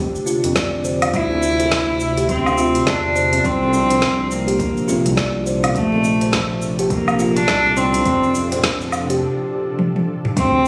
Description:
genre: organic downtempo.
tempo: 104 BPM.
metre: 4/4.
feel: swing 60% on 16ths.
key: unclear.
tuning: A4 = 440 Hz.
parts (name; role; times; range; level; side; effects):
ethereal airy pad; sustained chords; 0.0-10.7 s; Bb2 to E5; -29 LUFS; equal; ensemble chorus, built-in reverb, sidechain pumping.
kalimba; arpeggios; 0.0-10.6 s; D4 to D5; -25 LUFS; equal; tape echo.
round analog bass; bass; 0.0-10.7 s; Bb1 to F2; -28 LUFS; equal; tube saturation, sidechain pumping.
afro-pop drum kit; drums; 0.2-10.5 s; hi-hat, shaker, snare drum, toms, woodblock; -26 LUFS; equal; small room ambience.
electronic kick drum; drums; 0.6-10.5 s; none; -28 LUFS; equal; small room ambience.
rich cello; melody; 1.1-10.7 s; A3 to E4; -21 LUFS; equal; tape echo.
djembe; percussion; 1.3-8.6 s; none; -31 LUFS; equal; none.
room: moderate echo chamber reverb, RT60 2.3 s.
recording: recorded on a phone in the room, studio reverb.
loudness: -18 LUFS.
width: mono.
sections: 0.0-10.4 A section.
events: break 9.2-10.4; drum fill 9.8-10.4.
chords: 0.0 F6; 1.1 D7sus2; 3.4 C9sus4; 5.8 Bbmaj9; 8.1 F6.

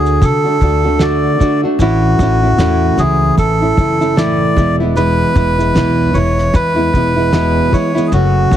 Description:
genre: acoustic pop.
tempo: 76 BPM.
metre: 4/4.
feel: swing 60% on 16ths.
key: unclear.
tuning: A4 = 440 Hz.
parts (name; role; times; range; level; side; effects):
melodica; melody; 0.0-8.6 s; F#4 to D5; -16 LUFS; equal; none.
nylon-string guitar; accompaniment; 0.0-8.6 s; E2 to F#4; -14 LUFS; equal; none.
upright bass; bass; 0.0-8.6 s; E1 to D3; -16 LUFS; equal; none.
cloth-damped thuddy drum kit; drums; 0.1-8.6 s; kick drum, shaker, snare drum; -16 LUFS; right 1 dB; none.
room: light reverb.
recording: heavily compressed radio sound, multiband compression.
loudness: -11 LUFS.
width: side -10 dB against mid.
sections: 0.0-8.6 A section.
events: none.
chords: 0.0 D; 1.8 A; 4.6 E.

